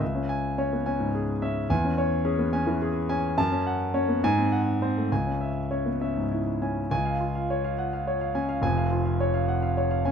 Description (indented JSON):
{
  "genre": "classical, virtuoso piano study",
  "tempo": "66-73 BPM (dotted quarters)",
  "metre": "6/8",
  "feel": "rubato",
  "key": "C# minor, Db major from 6.9 s",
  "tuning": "A4 = 440 Hz",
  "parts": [
    { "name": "warm concert grand piano", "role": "solo", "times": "0.0-10.1 s", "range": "F1 to A5", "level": "-24 LUFS", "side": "equal", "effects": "none" }
  ],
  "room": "light reverb",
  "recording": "minimal, uncompressed stereo recording",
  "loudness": "-24 LUFS",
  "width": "side -7 dB against mid",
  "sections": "0.0-6.9 A section; 6.9-10.1 B section",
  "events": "none",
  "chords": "0.0 C#m; 1.7 C#m/E; 3.4 F#m; 4.2 G#7; 5.1 C#m; 6.9 Db; 8.6 Db/F",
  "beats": "| 0.01 0.87 | 1.71 2.54 | 3.37 4.22 | 5.11 6.00 | 6.90 7.78 | 8.63 9.48"
}